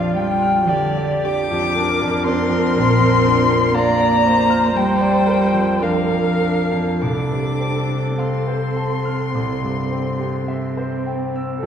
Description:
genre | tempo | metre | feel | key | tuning
classical, slow romantic movement for piano quartet | 48-61 BPM | 4/4 | rubato | unclear | A4 = 440 Hz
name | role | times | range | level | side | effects
muted violin | melody | 0.0-11.7 s | C5 to D6 | -21 LUFS | left 4 dB | none
muted cello | second line | 0.0-11.7 s | D3 to A4 | -22 LUFS | right 2 dB | none
bright concert grand piano | accompaniment | 0.0-11.7 s | Bb1 to F6 | -21 LUFS | left 1 dB | none
muted viola | accompaniment | 0.0-11.1 s | F4 to D5 | -24 LUFS | right 2 dB | none
room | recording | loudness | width
wet scoring stage reverb, RT60 2.0 s | heard from further back in the room | -16 LUFS | side -8 dB against mid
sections
0.0-11.6 A section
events
none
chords
0.0 Bb6; 2.8 Bb; 7.0 F/C; 9.3 C

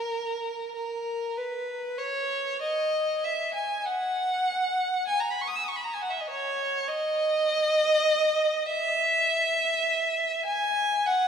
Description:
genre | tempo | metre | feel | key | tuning
classical, free, expressive piece for unaccompanied violin | 50 BPM | 4/4 | rubato | unclear | A4 = 438 Hz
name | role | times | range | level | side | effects
rich violin | solo | 0.0-11.3 s | A#4 to E6 | -24 LUFS | equal | none
room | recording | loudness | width
wet church reverb, RT60 3.6 s | minimal, uncompressed stereo recording | -24 LUFS | side -7 dB against mid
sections
0.0-11.3 A section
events
none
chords
none

